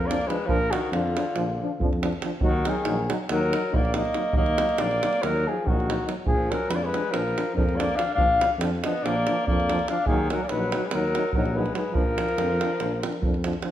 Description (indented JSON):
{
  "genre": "balkan folk, Balkan brass band",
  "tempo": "283 BPM (eighths)",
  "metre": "9/8",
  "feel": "straight",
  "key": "Bb phrygian dominant",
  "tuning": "A4 = 439 Hz",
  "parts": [
    { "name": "mellow flugelhorn", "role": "melody", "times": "0.0-13.4 s", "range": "F4 to F5", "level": "-27 LUFS", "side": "left 1 dB", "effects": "none" },
    { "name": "warm alto saxophone", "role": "second line", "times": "0.0-13.4 s", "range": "D3 to D4", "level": "-30 LUFS", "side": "left 3 dB", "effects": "none" },
    { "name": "mellow tuba", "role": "bass", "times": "0.0-13.6 s", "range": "Bb1 to F2", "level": "-30 LUFS", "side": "equal", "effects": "none" },
    { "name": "warm euphonium", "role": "accompaniment", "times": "0.1-13.7 s", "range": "D4 to Eb4", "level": "-33 LUFS", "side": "left 6 dB", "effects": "none" },
    { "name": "warm trombone", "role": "accompaniment", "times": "0.1-13.7 s", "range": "F3 to Gb3", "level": "-33 LUFS", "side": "right 5 dB", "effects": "none" },
    { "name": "davul", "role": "percussion", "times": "0.1-13.7 s", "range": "none", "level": "-28 LUFS", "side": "right 2 dB", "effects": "none" }
  ],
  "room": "moderate recital hall reverb, RT60 1.4 s",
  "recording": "none",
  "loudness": "-22 LUFS",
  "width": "side -12 dB against mid",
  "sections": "0.0-13.7 A section",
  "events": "speeding up 0.0-13.7",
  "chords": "0.0 Bb; 2.4 Ebm; 6.3 Bb; 10.1 Ebm; 12.0 Bb",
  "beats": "0.04 0.26 | 0.48 0.69 0.91 1.12 1.34 1.55 1.77 1.98 2.20 | 2.41 2.63 2.84 3.06 3.27 3.48 3.70 3.91 4.12 | 4.34 4.55 4.76 4.98 5.19 5.41 5.62 5.83 6.04 | 6.25 6.47 6.68 6.89 7.10 7.32 7.53 7.74 7.95 | 8.16 8.37 8.59 8.80 9.01 9.22 9.43 9.64 9.85 | 10.06 10.27 10.48 10.69 10.90 11.11 11.32 11.53 11.74 | 11.95 12.16 12.37 12.58 12.79 13.00 13.21 13.41 13.62"
}